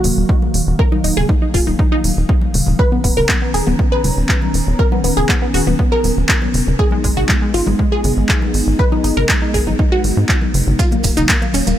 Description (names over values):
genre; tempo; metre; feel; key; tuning
progressive house; 120 BPM; 4/4; straight; Eb minor; A4 = 440 Hz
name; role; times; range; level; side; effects
warm analog pad; sustained chords; 0.0-11.8 s; Eb3 to A#5; -22 LUFS; equal; chorus, sidechain pumping
wide unison pluck; arpeggios; 0.0-11.8 s; Ab3 to B4; -20 LUFS; equal; sidechain pumping, tape echo
tight sequencer bass; bass; 0.0-11.7 s; Eb1 to Ab2; -18 LUFS; equal; sidechain pumping
deep house drum kit; drums; 0.0-11.8 s; handclaps, hi-hat; -20 LUFS; equal; none
congas; percussion; 0.0-11.8 s; none; -25 LUFS; left 4 dB; sidechain pumping on perc
electronic kick drum; drums; 0.3-11.4 s; none; -16 LUFS; equal; none
maracas; percussion; 10.8-11.8 s; none; -25 LUFS; right 5 dB; none
room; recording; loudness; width
digital ambience; none; -13 LUFS; side -11 dB against mid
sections
0.0-11.8 A section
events
filter sweep on analog synth pad 0.0-11.8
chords
0.0 Ebmadd9; 2.8 Bmaj7/D#; 6.8 Abm; 10.8 Ebmadd9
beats
0.29 | 0.79 1.29 1.79 2.29 | 2.79 3.29 3.79 4.29 | 4.79 5.29 5.79 6.29 | 6.79 7.29 7.79 8.29 | 8.79 9.29 9.79 10.29 | 10.79 11.29